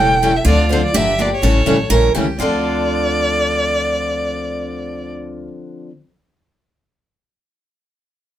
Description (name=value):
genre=acoustic string swing (jazz manouche)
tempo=248 BPM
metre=4/4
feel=swing 55% on 8ths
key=D minor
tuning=A4 = 440 Hz
part: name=warm violin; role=melody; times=0.0-5.1 s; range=C5 to G5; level=-19 LUFS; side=right 1 dB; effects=none
part: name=picked steel-string acoustic guitar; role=second line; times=0.0-5.5 s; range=F4 to Bb4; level=-22 LUFS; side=right 3 dB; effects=none
part: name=picked steel-string acoustic guitar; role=accompaniment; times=0.0-5.9 s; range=C#3 to A4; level=-22 LUFS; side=left 4 dB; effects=none
part: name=picked steel-string acoustic guitar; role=accompaniment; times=0.0-5.9 s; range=D3 to A4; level=-25 LUFS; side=right 3 dB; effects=none
part: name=upright bass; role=bass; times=0.0-5.5 s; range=E1 to D2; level=-20 LUFS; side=equal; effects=none
room=moderate small room ambience, RT60 0.5 s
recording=band playing live in one room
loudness=-14 LUFS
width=side -12 dB against mid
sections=0.0-2.4 A section; 2.4-4.3 B section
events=none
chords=0.5 Dm7; 0.9 Gm7; 1.4 A7b9; 2.4 Dm7